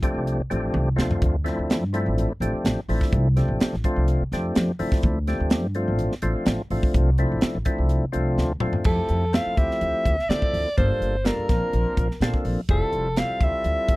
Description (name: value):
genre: electric jazz fusion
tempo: 126 BPM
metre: 4/4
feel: straight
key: D minor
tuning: A4 = 441 Hz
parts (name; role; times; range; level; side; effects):
- percussive tonewheel organ; accompaniment; 0.0-14.0 s; F3 to Bb4; -27 LUFS; left 1 dB; slow rotary speaker, overdrive
- crisp fusion drum kit; drums; 0.0-14.0 s; crash cymbal, hi-hat, kick drum, snare drum, toms; -23 LUFS; equal; none
- upright bass; bass; 0.1-14.0 s; F1 to D3; -24 LUFS; equal; none
- warm soprano saxophone; melody; 8.9-14.0 s; A4 to F5; -25 LUFS; equal; none
room: little or no reverb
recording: dry, close 1970s-style studio recording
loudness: -20 LUFS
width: side -20 dB against mid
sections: 0.0-8.9 A section; 8.9-14.0 B section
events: drum fill 0.7-1.2, 8.4-8.9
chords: 0.0 Dm9; 8.9 Fmaj9; 9.6 Dm11; 10.8 Gm9; 11.5 Bbmaj9; 12.7 Fmaj9; 13.4 Dm11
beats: 0.26 0.73 | 1.21 1.69 2.17 2.64 | 3.12 3.60 4.08 4.55 | 5.03 5.51 5.99 6.46 | 6.94 7.42 7.90 8.38 | 8.86 9.33 9.81 10.29 | 10.77 11.25 11.73 12.21 | 12.68 13.16 13.64